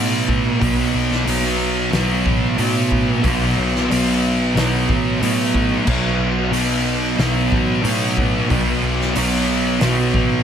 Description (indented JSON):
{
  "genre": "rock, shoegaze and dream pop",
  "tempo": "91 BPM",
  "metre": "4/4",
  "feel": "straight",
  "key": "unclear",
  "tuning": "A4 = 440 Hz",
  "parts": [
    { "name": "thick fuzz guitar", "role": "riff", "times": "0.0-10.4 s", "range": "B2 to B3", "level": "-17 LUFS", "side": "right 1 dB", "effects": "distortion, wide subtle chorus" },
    { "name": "vintage muted picked electric bass", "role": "bass", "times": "0.0-10.4 s", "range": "A1 to A2", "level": "-23 LUFS", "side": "equal", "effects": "none" },
    { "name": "loose indie drum kit", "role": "drums", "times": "0.3-10.3 s", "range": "crash cymbal, hi-hat, kick drum, snare drum", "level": "-24 LUFS", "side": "equal", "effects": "none" }
  ],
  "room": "wet huge ambient reverb, RT60 4.5 s",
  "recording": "dreamy mix soaked in reverb",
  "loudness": "-16 LUFS",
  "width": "side -8 dB against mid",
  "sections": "0.0-5.9 A section; 5.9-10.4 A section",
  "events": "none",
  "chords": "0.0 B5"
}